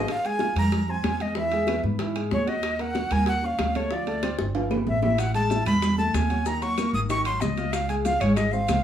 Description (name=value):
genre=Afro-Cuban jazz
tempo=188 BPM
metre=4/4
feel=straight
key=unclear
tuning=A4 = 442 Hz
part: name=breathy bright jazz flute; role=melody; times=0.0-8.8 s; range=Db5 to Eb6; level=-27 LUFS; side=equal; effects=none
part: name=warm baby grand piano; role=accompaniment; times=0.0-8.8 s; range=Eb3 to F#6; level=-30 LUFS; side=right 2 dB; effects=none
part: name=upright bass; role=bass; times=0.0-8.8 s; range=G1 to G#2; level=-28 LUFS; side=equal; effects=none
part: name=bongos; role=percussion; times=0.1-8.8 s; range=none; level=-33 LUFS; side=left 6 dB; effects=none
part: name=claves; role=percussion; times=0.1-8.8 s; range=none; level=-44 LUFS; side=left 8 dB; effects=none
part: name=congas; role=percussion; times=0.1-8.8 s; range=none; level=-30 LUFS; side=equal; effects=none
part: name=timbales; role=percussion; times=0.1-8.8 s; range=none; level=-35 LUFS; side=right 4 dB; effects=none
part: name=maracas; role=percussion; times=5.2-8.8 s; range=none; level=-44 LUFS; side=left 6 dB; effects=none
room=light reverb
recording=studio ambience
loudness=-22 LUFS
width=side -10 dB against mid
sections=0.1-8.8 A section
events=drum fill 4.2-5.2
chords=0.1 Ab69; 1.4 Eadd9; 2.6 Ebm9; 3.9 Dm7; 4.5 G9; 5.2 A5; 6.5 Ebm7; 7.1 Ab5; 7.7 Dbmaj7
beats=| 0.08 0.40 0.72 1.04 | 1.36 1.68 2.00 2.32 | 2.64 2.96 3.27 3.59 | 3.91 4.23 4.55 4.87 | 5.19 5.50 5.82 6.14 | 6.46 6.78 7.10 7.42 | 7.73 8.05 8.37 8.69